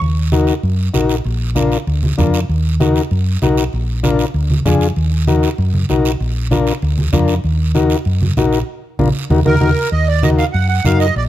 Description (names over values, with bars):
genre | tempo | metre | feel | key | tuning
latin, cumbia | 194 BPM | 4/4 | straight | Eb harmonic minor | A4 = 441 Hz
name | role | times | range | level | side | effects
hollow-body short-scale fingered electric bass | bass | 0.0-11.3 s | Bb1 to Gb2 | -16 LUFS | equal | none
guiro | percussion | 0.0-11.3 s | none | -30 LUFS | right 8 dB | none
overdriven combo organ | accompaniment | 0.3-11.1 s | D4 to Bb4 | -18 LUFS | left 5 dB | none
congas | percussion | 0.3-11.0 s | none | -19 LUFS | right 2 dB | none
accordion | melody | 9.5-11.2 s | Bb4 to Gb5 | -18 LUFS | right 5 dB | light tremolo tuning
room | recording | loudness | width
little or no reverb | close, detailed microphones | -13 LUFS | side -13 dB against mid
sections
0.0-9.9 A section; 9.9-11.3 B section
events
band accent 8.7-9.9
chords
0.0 Ebm; 1.3 Bb; 2.5 Ebm; 3.7 Bb; 5.0 Ebm; 6.2 Bb; 7.4 Ebm; 8.7 Bb; 9.3 Ebm